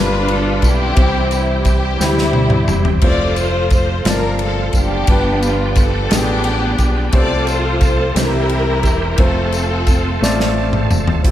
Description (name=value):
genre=slow gospel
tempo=58 BPM (dotted quarters)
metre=6/8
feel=straight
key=F major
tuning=A4 = 439 Hz
part: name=warm studio string section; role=melody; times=0.0-10.6 s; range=G3 to D5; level=-20 LUFS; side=left 1 dB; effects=tape echo
part: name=warm grand piano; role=accompaniment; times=0.0-11.3 s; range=G2 to A5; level=-21 LUFS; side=left 1 dB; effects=slapback echo
part: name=bright tonewheel organ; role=sustained chords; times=0.0-11.2 s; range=C3 to B4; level=-25 LUFS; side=right 4 dB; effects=slow rotary speaker, chorus vibrato
part: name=fingered electric bass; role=bass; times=0.0-11.3 s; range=E1 to D2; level=-20 LUFS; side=equal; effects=none
part: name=natural country drum kit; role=drums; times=0.3-11.3 s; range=crash cymbal, hi-hat, kick drum, ride cymbal, snare drum, toms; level=-17 LUFS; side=equal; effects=none
part: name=tambourine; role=percussion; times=0.6-11.2 s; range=none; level=-31 LUFS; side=left 4 dB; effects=none
room=light reverb, small room ambience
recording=none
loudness=-13 LUFS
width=side -12 dB against mid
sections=0.0-11.2 A section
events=drum fill 2.0-3.0, 10.2-11.2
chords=0.0 G7; 1.0 C; 3.0 F; 5.1 G7; 7.1 F/C; 8.2 C; 9.2 F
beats=| 0.97 2.00 | 3.02 4.05 | 5.08 6.10 | 7.13 8.16 | 9.19 10.22 | 11.25